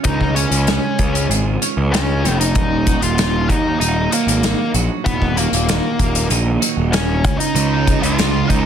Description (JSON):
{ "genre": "quiet-loud alternative rock", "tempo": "96 BPM", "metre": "4/4", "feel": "straight", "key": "Eb minor", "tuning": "A4 = 439 Hz", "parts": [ { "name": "octave-fuzz lead guitar", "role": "melody", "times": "0.0-8.7 s", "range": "Bb3 to F5", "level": "-21 LUFS", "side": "left 4 dB", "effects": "distortion, slapback echo" }, { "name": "twelve-string electric guitar", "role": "arpeggios", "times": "0.0-7.6 s", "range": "Eb2 to Ab4", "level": "-23 LUFS", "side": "right 11 dB", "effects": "wide subtle chorus, slapback echo" }, { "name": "fuzz picked electric bass", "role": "bass", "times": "0.0-8.7 s", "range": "Eb1 to Eb2", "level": "-19 LUFS", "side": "equal", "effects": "overdrive" }, { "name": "loose indie drum kit", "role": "drums", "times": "0.0-8.6 s", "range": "hi-hat, kick drum, snare drum", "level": "-19 LUFS", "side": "left 1 dB", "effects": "none" }, { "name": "thick fuzz guitar", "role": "riff", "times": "7.5-8.7 s", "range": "Db3 to Db4", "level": "-18 LUFS", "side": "right 12 dB", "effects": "distortion" } ], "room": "light reverb", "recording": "dense, heavily limited modern master", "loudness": "-14 LUFS", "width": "side -8 dB against mid", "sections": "0.0-8.7 A section", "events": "none", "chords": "0.0 Db; 2.6 Ebm; 7.2 Db" }